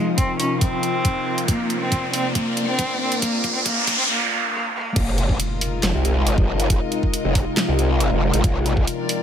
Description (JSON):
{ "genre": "heavy wobble dubstep", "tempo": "138 BPM", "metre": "4/4", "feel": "half-time", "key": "F minor", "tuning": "A4 = 439 Hz", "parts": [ { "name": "rich cello", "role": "melody", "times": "0.0-4.9 s", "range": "Ab3 to Db4", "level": "-24 LUFS", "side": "equal", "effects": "low-pass filter, digital delay" }, { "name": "evolving wavetable pad", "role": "sustained chords", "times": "0.0-9.2 s", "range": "C3 to F4", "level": "-26 LUFS", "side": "left 2 dB", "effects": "chorus, built-in reverb, sidechain pumping" }, { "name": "riser, noise sweep and impact", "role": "sound effects", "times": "0.4-6.7 s", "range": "none", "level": "-25 LUFS", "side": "right 1 dB", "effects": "none" }, { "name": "dark chamber string section", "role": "texture", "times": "0.0-9.2 s", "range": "C4 to Eb5", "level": "-31 LUFS", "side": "left 4 dB", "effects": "sidechain pumping" }, { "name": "dubstep drum kit", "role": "drums", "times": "0.2-9.2 s", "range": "crash cymbal, handclaps, hi-hat, snare drum", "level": "-25 LUFS", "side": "right 1 dB", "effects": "studio ambience" }, { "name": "electronic kick drum", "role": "drums", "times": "0.2-8.9 s", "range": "none", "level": "-22 LUFS", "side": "equal", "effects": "studio ambience" }, { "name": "growl bass", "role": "bass", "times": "5.0-8.9 s", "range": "F1 to C2", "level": "-20 LUFS", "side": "equal", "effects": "chorus, overdrive" } ], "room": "little or no reverb", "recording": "high-pass filter", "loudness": "-18 LUFS", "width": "side -8 dB against mid", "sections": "0.0-5.0 A section; 5.0-9.2 B section", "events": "build-up 0.0-5.0; filter sweep 0.0-5.0; riser 0.4-4.1; drum fill 1.5-4.1; noise sweep 3.2-5.0; break 4.1-5.0; drop 5.0-9.2; impact 5.0-6.7", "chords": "0.0 F5; 1.5 Bbadd9; 5.0 Fm7; 8.4 Bbadd9", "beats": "0.18 0.61 1.05 | 1.48 1.92 2.35 2.79 | 3.22 3.66 4.09 4.53 | 4.96 5.40 5.83 6.26 | 6.70 7.13 7.57 8.01 | 8.44 8.87" }